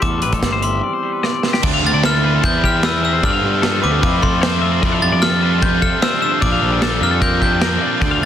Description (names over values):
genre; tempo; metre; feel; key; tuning
math rock and midwest emo; 151 BPM; 4/4; straight; unclear; A4 = 440 Hz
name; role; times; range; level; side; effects
glockenspiel with hard plastic mallets; melody; 0.0-7.8 s; C6 to A6; -20 LUFS; left 2 dB; none
electric guitar through a small old amp; accompaniment; 0.0-8.3 s; E2 to G4; -25 LUFS; right 7 dB; none
twelve-string electric guitar; arpeggios; 0.0-8.3 s; G4 to F5; -24 LUFS; left 7 dB; none
fuzz picked electric bass; bass; 0.0-8.3 s; G1 to G2; -20 LUFS; equal; overdrive
modern studio drum kit; drums; 0.0-8.1 s; crash cymbal, hi-hat, kick drum, snare drum; -20 LUFS; equal; none
overdriven electric guitar; riff; 1.6-8.3 s; G2 to F4; -22 LUFS; equal; none
room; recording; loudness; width
light reverb; dense, heavily limited modern master; -14 LUFS; side -10 dB against mid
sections
0.0-1.6 A section; 1.6-8.3 B section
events
drum fill 1.2-1.6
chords
0.0 Am7; 1.6 Dm9; 2.4 Cmaj7/E; 3.2 G7sus4; 4.0 Fmaj7; 4.8 Dm11/F; 6.4 Bb69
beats
| 0.03 0.43 0.83 1.23 | 1.63 2.03 2.43 2.83 | 3.23 3.63 4.03 4.43 | 4.82 5.22 5.62 6.02 | 6.42 6.81 7.21 7.61 | 8.01